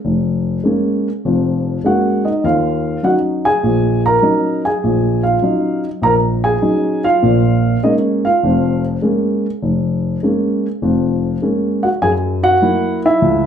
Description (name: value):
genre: solo jazz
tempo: 100 BPM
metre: 4/4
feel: swing 68% on 8ths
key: Bb minor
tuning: A4 = 439 Hz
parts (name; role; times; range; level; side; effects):
- dark baby grand piano; solo; 0.0-13.5 s; F1 to Bb5; -13 LUFS; equal; none
room: wet club reverb, RT60 0.7 s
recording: heard from further back in the room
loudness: -13 LUFS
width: side -8 dB against mid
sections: 0.0-13.5 A section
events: none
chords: 0.0 Bbm7; 2.4 Ebm7; 7.2 Bbm7; 12.0 Gb7